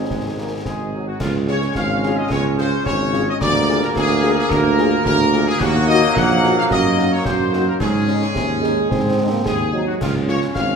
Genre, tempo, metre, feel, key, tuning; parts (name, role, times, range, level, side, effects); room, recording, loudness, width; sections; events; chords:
military-style march for wind band; 109 BPM; 2/4; straight; Db major; A4 = 440 Hz
clear trumpet section; melody; 0.0-10.8 s; F4 to Gb5; -22 LUFS; left 1 dB
glockenspiel with brass mallets; second line; 0.0-0.9 s; barely audible
warm euphonium; second line; 0.0-0.9, 8.3-10.0 s; C3 to C4; -24 LUFS; right 3 dB
mellow French horn section; accompaniment; 0.0-10.4 s; Ab3 to Ab4; -25 LUFS; left 5 dB
clear trombone section; sustained chords; 0.0-10.8 s; Gb3 to Db4; -24 LUFS; right 1 dB
mellow tuba; bass; 0.0-10.8 s; Ab1 to Ab2; -19 LUFS; right 2 dB
concert snare drum, concert bass drum and clash cymbals; drums; 0.1-10.8 s; -27 LUFS; left 1 dB
wet concert hall reverb, RT60 1.8 s; minimal, uncompressed stereo recording; -15 LUFS; side -6 dB against mid
0.0-1.2 A section; 1.2-10.8 B section
0.0 Ab; 1.2 Db; 3.4 Bb7/D; 5.6 Ebm; 6.7 Ebm/Gb; 7.8 Absus4; 8.9 Ab; 10.0 Db